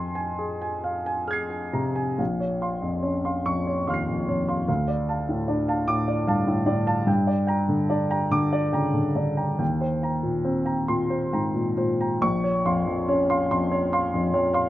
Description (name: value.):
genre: neoclassical minimalist piano.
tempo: 43-50 BPM (dotted quarters).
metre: 6/8.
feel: rubato.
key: unclear.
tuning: A4 = 445 Hz.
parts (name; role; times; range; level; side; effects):
warm grand piano; solo; 0.0-14.7 s; Bb1 to C7; -22 LUFS; equal; none.
room: light reverb.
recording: recorded outdoors, with no room sound, nothing above 7.8 kHz.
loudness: -22 LUFS.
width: side -14 dB against mid.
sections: 0.0-2.2 A section; 2.2-12.2 B section; 12.2-14.7 C section.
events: none.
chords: 0.0 Fm; 2.2 Bbmadd9; 4.7 Dm; 7.1 Gm; 9.6 Eb6; 12.2 Bbmadd9.